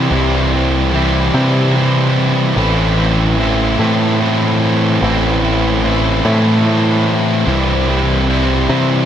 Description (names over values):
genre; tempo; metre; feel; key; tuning
post-rock; 49 BPM (dotted quarters); 6/8; straight; unclear; A4 = 440 Hz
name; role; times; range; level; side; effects
thick fuzz guitar; riff; 0.0-9.1 s; A2 to E4; -14 LUFS; equal; distortion
growling picked electric bass; bass; 0.0-9.1 s; A1 to C3; -16 LUFS; equal; overdrive
room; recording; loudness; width
light reverb; none; -12 LUFS; side -9 dB against mid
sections
0.0-9.1 A section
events
none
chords
0.0 C; 2.6 Am; 7.5 C